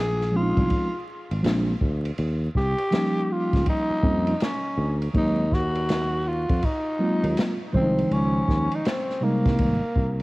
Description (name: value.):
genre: hip hop, jazz-hop.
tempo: 81 BPM.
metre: 4/4.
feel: swing 64% on 16ths.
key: unclear.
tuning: A4 = 442 Hz.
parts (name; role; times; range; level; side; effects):
growling tenor saxophone; melody; 0.0-10.2 s; Bb3 to Ab4; -27 LUFS; equal; cassette tape, tape echo.
sustaining fretless electric bass; bass; 0.0-10.2 s; Ab1 to F2; -26 LUFS; equal; none.
open jazz drum kit; drums; 0.2-10.2 s; hi-hat, kick drum, ride cymbal, snare drum; -27 LUFS; equal; cassette tape.
mellow tine electric piano; accompaniment; 0.3-9.8 s; C3 to C5; -25 LUFS; equal; medium stereo tremolo.
room: little or no reverb.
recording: home recording on cassette, vinyl crackle.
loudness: -21 LUFS.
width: side -21 dB against mid.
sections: 0.0-10.2 A section.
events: none.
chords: 0.0 Bbm11; 1.4 Bb7; 2.2 Eb9; 5.1 Ab7/Eb; 8.1 Dbmaj9; 9.6 Abmaj9.